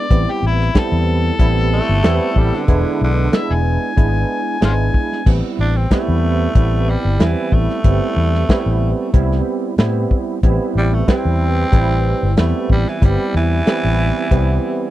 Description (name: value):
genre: straight-eighth soul blues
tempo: 93 BPM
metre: 4/4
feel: swing 53% on 16ths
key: A minor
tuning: A4 = 442 Hz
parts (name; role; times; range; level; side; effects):
- overdriven harmonica; melody; 0.0-5.3 s; E4 to G#5; -22 LUFS; left 4 dB; none
- barky tine electric piano; accompaniment; 0.0-14.9 s; G3 to B4; -21 LUFS; right 4 dB; ensemble chorus
- vintage muted fingered electric bass; bass; 0.1-14.6 s; E1 to A2; -16 LUFS; left 1 dB; none
- warm soul drum kit; drums; 0.1-14.5 s; crash cymbal, hi-hat, kick drum, snare drum; -14 LUFS; left 1 dB; none
- growling tenor saxophone; second line; 1.7-14.9 s; D3 to D4; -22 LUFS; right 1 dB; none
room: little or no reverb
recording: dry, close 1970s-style studio recording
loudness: -14 LUFS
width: side -14 dB against mid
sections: 0.0-5.3 A section; 5.3-14.9 B section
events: tenor saxophone solo 5.3-14.9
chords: 0.1 Am9; 2.7 E7; 5.3 Am9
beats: | 0.11 0.75 1.39 2.04 | 2.68 3.33 3.97 4.62 | 5.26 5.91 6.56 7.20 | 7.85 8.49 9.14 9.79 | 10.43 11.08 11.73 12.37 | 13.02 13.67 14.31